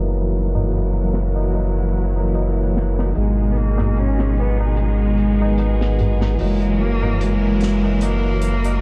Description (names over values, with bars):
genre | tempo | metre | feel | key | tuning
trip hop | 74 BPM | 4/4 | swing 55% on 16ths | unclear | A4 = 436 Hz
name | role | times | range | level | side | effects
tonewheel organ | accompaniment | 0.0-8.6 s | B2 to B3 | -26 LUFS | equal | overdrive, stopped rotary speaker, harmonic tremolo, vintage 12-bit sampler grit, tape echo
bright symphonic string section | sustained chords | 0.0-8.8 s | F#3 to A#4 | -34 LUFS | equal | none
soft dub sub bass | bass | 0.0-8.8 s | F#1 to G#1 | -22 LUFS | equal | tube saturation
flickering grainy texture | texture | 0.0-8.8 s | F#3 to F#4 | -36 LUFS | equal | none
modern studio drum kit | drums | 0.1-8.8 s | hi-hat, snare drum | -34 LUFS | equal | high-pass filter on hats, high-pass filter on snare, high-pass filter on room
tabla | percussion | 0.1-8.8 s | none | -33 LUFS | equal | none
rich cello | melody | 3.2-8.8 s | G#3 to C#4 | -26 LUFS | equal | vintage 12-bit sampler grit, tape echo
room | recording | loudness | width
moderate cathedral reverb, RT60 6.0 s | dreamy mix soaked in reverb, vinyl crackle, low-pass filter | -19 LUFS | mono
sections
0.0-8.8 A section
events
filter sweep 0.0-8.8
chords
0.0 F#7; 3.2 G#m; 6.4 F#7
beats
0.72 1.53 2.34 | 3.15 3.96 4.77 5.58 | 6.39 7.21 8.02